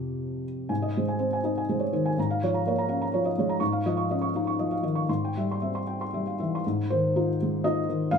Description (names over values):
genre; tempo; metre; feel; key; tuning
neoclassical minimalist piano; 114-127 BPM; 3/4; rubato; Ab major; A4 = 440 Hz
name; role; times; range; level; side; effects
felt-muted upright piano; solo; 0.0-8.2 s; F2 to Db6; -25 LUFS; equal; none
room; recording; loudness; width
moderate large studio reverb, RT60 1.2 s; band playing live in one room; -25 LUFS; side -6 dB against mid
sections
0.7-6.6 A section; 6.6-8.2 B section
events
none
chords
0.0 Fsus2; 0.7 Ab; 2.2 Bbm/Ab; 3.6 Dbadd9/Ab; 5.1 C/Ab; 6.6 Ab6